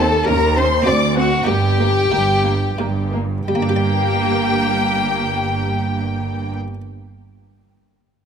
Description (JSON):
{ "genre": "classical, baroque-style concerto movement with solo episodes", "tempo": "83-106 BPM", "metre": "3/4", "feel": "straight", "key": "G minor", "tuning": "A4 = 440 Hz", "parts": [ { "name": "rich chamber violin section", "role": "melody", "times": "0.0-6.5 s", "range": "F#5 to D6", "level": "-24 LUFS", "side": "left 3 dB", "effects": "none" }, { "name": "rich violin", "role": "melody", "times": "0.0-6.5 s", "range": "F#4 to G5", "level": "-23 LUFS", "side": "left 3 dB", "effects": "none" }, { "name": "dark studio violin section", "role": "second line", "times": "0.0-6.5 s", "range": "F#4 to D5", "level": "-24 LUFS", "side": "left 4 dB", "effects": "none" }, { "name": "buff-stop harpsichord", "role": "accompaniment", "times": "0.0-6.8 s", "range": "D2 to D5", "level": "-26 LUFS", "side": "equal", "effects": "none" }, { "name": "dark studio viola section", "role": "accompaniment", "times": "0.0-6.5 s", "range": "Bb3 to Db4", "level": "-24 LUFS", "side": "right 3 dB", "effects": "none" }, { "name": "rich chamber cello section", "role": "bass", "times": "0.0-6.5 s", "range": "D2 to G2", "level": "-22 LUFS", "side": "right 2 dB", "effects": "none" }, { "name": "rich chamber double bass section", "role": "bass", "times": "0.0-6.5 s", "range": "G1 to Eb2", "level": "-24 LUFS", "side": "right 4 dB", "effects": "none" } ], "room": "light reverb", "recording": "close, detailed microphones", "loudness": "-15 LUFS", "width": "side -7 dB against mid", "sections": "0.0-3.5 A section; 3.5-7.8 B section", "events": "slowing down 0.0-3.5", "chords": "0.3 Eb7; 0.9 D7; 1.5 Gm" }